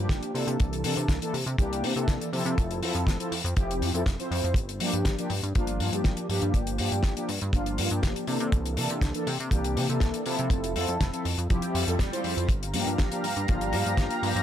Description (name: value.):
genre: nu-disco, nu disco.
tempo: 121 BPM.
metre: 4/4.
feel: straight.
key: G dorian.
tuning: A4 = 442 Hz.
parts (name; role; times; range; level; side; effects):
mellow synth brass; accompaniment; 0.0-14.4 s; E3 to C5; -30 LUFS; equal; chorus, tape echo.
chorused synth bass; bass; 0.0-14.4 s; F1 to C3; -30 LUFS; equal; none.
damped 70s drum kit; drums; 0.1-14.4 s; hi-hat, snare drum; -33 LUFS; left 3 dB; none.
kick drum; drums; 0.1-14.1 s; none; -25 LUFS; equal; none.
swell; sound effects; 11.6-12.5 s; none; -38 LUFS; left 1 dB; none.
lush unison pad; sustained chords; 12.5-14.4 s; G4 to Bb5; -31 LUFS; equal; chorus, sidechain pumping.
room: light reverb.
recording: none.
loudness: -25 LUFS.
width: side -10 dB against mid.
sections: 0.0-14.4 A section.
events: swell 11.6-12.5.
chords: 0.3 C13; 2.6 Fmaj7; 4.6 Gm7; 8.3 C13; 10.5 Fmaj7; 12.5 Gm7.